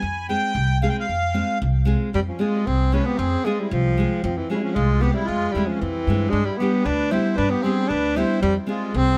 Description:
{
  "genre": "balkan folk",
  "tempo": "114 BPM",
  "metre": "2/4",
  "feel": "straight",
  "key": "F hungarian minor",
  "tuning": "A4 = 440 Hz",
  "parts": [
    { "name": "accordion", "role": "second line", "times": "0.0-9.2 s", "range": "C4 to Ab5", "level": "-31 LUFS", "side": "equal", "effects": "light tremolo tuning, tape echo" },
    { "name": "upright bass", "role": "bass", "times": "0.0-9.2 s", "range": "C2 to G2", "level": "-25 LUFS", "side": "equal", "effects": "none" },
    { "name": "nylon-string guitar", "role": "accompaniment", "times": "0.3-8.9 s", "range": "G3 to Ab4", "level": "-27 LUFS", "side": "equal", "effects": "none" },
    { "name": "mellow alto saxophone", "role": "melody", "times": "2.1-9.2 s", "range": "E3 to E4", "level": "-25 LUFS", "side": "equal", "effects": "tape echo" }
  ],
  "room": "moderate studio ambience, RT60 0.5 s",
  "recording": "none",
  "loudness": "-22 LUFS",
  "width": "mono",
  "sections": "0.0-2.1 A section; 2.1-9.2 B section",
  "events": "accordion solo 0.0-2.1",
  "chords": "0.0 Fm; 6.3 G; 8.4 Fm",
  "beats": "| 0.03 0.56 | 1.08 1.61 | 2.13 2.66 | 3.19 3.71 | 4.23 4.76 | 5.28 5.81 | 6.33 6.85 | 7.38 7.90 | 8.42 8.95"
}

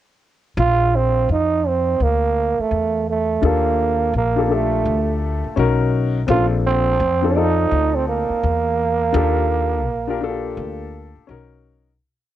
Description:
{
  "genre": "hip hop, jazz-hop",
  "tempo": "84 BPM",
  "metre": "4/4",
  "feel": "swing 63% on 16ths",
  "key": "Bb major",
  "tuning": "A4 = 440 Hz",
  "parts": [
    { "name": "growling trombone", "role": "melody", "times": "0.6-11.2 s", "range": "A3 to F4", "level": "-19 LUFS", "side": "right 5 dB", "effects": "cassette tape, analog delay" },
    { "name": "upright bass", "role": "bass", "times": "0.6-12.0 s", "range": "Bb1 to F2", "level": "-21 LUFS", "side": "left 1 dB", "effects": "none" },
    { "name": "dark upright piano", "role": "accompaniment", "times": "3.4-11.9 s", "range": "C4 to D5", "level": "-22 LUFS", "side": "left 8 dB", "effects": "cassette tape" }
  ],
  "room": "light reverb",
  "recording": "home recording on cassette",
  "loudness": "-16 LUFS",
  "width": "side -12 dB against mid",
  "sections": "0.6-12.0 A section",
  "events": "fade-out 9.1-12.0",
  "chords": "0.6 Bb; 3.4 Ebmaj9#11; 5.6 Bmaj9; 6.3 Bbmaj9; 9.1 Ebmaj9#11; 11.3 Bmaj9",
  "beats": "| 0.57 1.29 2.00 2.71 | 3.43 4.14 4.86 5.57 | 6.29 7.00 7.71 8.43 | 9.14 9.86 10.57 11.29"
}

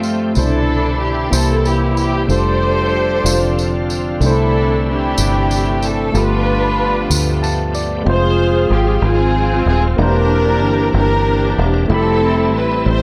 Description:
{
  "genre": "slow gospel",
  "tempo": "62 BPM (dotted quarters)",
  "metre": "6/8",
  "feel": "straight",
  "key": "C major",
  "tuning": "A4 = 440 Hz",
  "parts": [
    { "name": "muted studio string section", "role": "melody", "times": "0.0-13.0 s", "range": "A3 to C5", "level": "-20 LUFS", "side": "equal", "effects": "none" },
    { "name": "barky tine electric piano", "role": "accompaniment", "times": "0.0-13.0 s", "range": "G2 to B5", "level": "-23 LUFS", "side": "equal", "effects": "none" },
    { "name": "bright tonewheel organ", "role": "sustained chords", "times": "0.0-13.0 s", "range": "D3 to C5", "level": "-28 LUFS", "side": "equal", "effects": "slow rotary speaker, overdrive, chorus vibrato" },
    { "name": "muted French horn section", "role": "sustained chords", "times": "0.0-8.0 s", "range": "E3 to F4", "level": "-31 LUFS", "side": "equal", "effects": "none" },
    { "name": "tambourine", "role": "percussion", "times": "0.0-8.0 s", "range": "none", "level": "-28 LUFS", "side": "equal", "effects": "none" },
    { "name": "fingered electric bass", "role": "bass", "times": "0.4-13.0 s", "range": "Eb1 to D2", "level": "-20 LUFS", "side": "equal", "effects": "none" }
  ],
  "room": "light reverb, small room ambience",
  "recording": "none",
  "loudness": "-15 LUFS",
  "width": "mono",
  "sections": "0.0-8.1 A section; 8.1-13.0 B section",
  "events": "tine electric piano fill 7.1-8.1",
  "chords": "0.4 Cmaj9; 1.3 C7; 2.3 F69; 3.3 F5; 4.2 C69; 6.1 G9; 8.1 Fm; 10.0 C9/E; 11.9 Fmaj9#11",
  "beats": "| 0.36 1.32 | 2.29 3.25 | 4.22 5.18 | 6.14 7.11 | 8.07 9.03 | 9.99 10.95 | 11.90 12.86"
}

